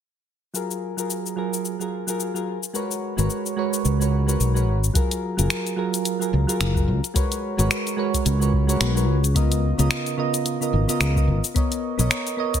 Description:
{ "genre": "sunset chillout", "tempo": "109 BPM", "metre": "4/4", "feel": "swing 58% on 16ths", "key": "F# major", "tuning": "A4 = 440 Hz", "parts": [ { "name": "soft electric-piano-like synth keys", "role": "accompaniment", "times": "0.5-12.6 s", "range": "C#3 to D#5", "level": "-25 LUFS", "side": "moving between left 4 dB and right 7 dB", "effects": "chorus, auto-pan, low-pass filter, digital delay" }, { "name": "deep house drum kit", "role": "drums", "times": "0.6-12.6 s", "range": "finger snaps, hi-hat, shaker", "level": "-26 LUFS", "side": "left 3 dB", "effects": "none" }, { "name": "fretless electric bass", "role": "bass", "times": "3.2-12.1 s", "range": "F#1 to C#2", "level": "-20 LUFS", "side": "equal", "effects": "tube saturation, ensemble chorus" }, { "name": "electronic kick drum", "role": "drums", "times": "5.0-12.6 s", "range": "none", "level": "-23 LUFS", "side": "equal", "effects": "none" } ], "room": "light reverb, digital ambience", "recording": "none", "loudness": "-20 LUFS", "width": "side -9 dB against mid", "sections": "0.5-5.0 A section; 5.0-12.6 B section", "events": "none", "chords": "0.5 F#maj9; 2.7 G#m11; 5.0 F#maj9; 7.2 G#m11; 9.4 C#13; 11.6 Bmaj9" }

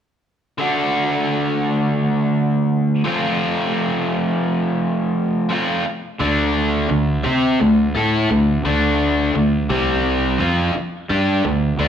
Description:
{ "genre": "rock", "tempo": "86 BPM", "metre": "4/4", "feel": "straight", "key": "unclear", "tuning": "A4 = 436 Hz", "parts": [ { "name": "biting overdriven guitar", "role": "riff", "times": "0.6-11.9 s", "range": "C3 to C5", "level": "-17 LUFS", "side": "equal", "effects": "none" }, { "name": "fuzz fingered electric bass", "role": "bass", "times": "6.2-11.9 s", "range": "C2 to C3", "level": "-21 LUFS", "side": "equal", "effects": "overdrive" } ], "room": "wet large studio reverb, RT60 1.2 s", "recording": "band playing live in one room", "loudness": "-16 LUFS", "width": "side -8 dB against mid", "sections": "0.6-6.2 A section; 6.2-11.9 B section", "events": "none", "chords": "0.6 D; 3.0 F; 6.2 D5; 9.7 C5; 10.4 D5" }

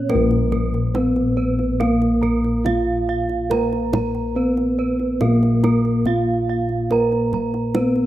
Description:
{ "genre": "Javanese gamelan", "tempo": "70 BPM", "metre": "4/4", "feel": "straight", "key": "unclear", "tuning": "A4 = 440 Hz", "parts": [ { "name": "gamelan-type bronze metallophone", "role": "melody", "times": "0.0-8.1 s", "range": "Bb3 to Bb4", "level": "-21 LUFS", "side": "right 1 dB", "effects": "none" }, { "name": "gamelan-type bronze metallophone", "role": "accompaniment", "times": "0.0-8.1 s", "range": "Bb3 to Cb4+35c", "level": "-27 LUFS", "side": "left 1 dB", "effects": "none" }, { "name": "gamelan-type bronze metallophone", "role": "arpeggios", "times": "0.0-8.1 s", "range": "Bb4 to Bb5", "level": "-27 LUFS", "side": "right 6 dB", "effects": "none" }, { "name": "gamelan-type bossed gongs", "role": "bass", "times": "0.0-8.1 s", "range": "Bb1 to Bb4", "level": "-22 LUFS", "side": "left 1 dB", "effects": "none" }, { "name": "gamelan-type bossed gongs", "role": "arpeggios", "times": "0.1-8.1 s", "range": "Bb4 to Bb5", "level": "-31 LUFS", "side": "left 4 dB", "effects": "none" }, { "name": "kendang", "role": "percussion", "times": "0.1-8.1 s", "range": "none", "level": "-28 LUFS", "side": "right 3 dB", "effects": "none" } ], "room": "light reverb, studio reverb", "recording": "rough home demo mix", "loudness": "-17 LUFS", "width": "side -14 dB against mid", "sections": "0.1-8.1 A section", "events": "none", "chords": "none" }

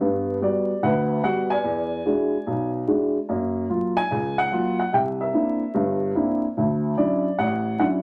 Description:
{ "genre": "solo jazz", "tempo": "146 BPM", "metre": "4/4", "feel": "swing 66% on 8ths", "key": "unclear", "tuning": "A4 = 442 Hz", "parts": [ { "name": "dark upright piano", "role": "solo", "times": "0.0-8.0 s", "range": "G1 to G#5", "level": "-23 LUFS", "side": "equal", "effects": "none" } ], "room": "wet studio reverb, RT60 0.5 s", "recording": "vinyl crackle", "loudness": "-23 LUFS", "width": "mono", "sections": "0.0-8.0 A section", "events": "none", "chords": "0.0 Gmaj7; 1.6 E9; 3.3 F#maj7; 4.9 C9; 6.6 Dmaj9" }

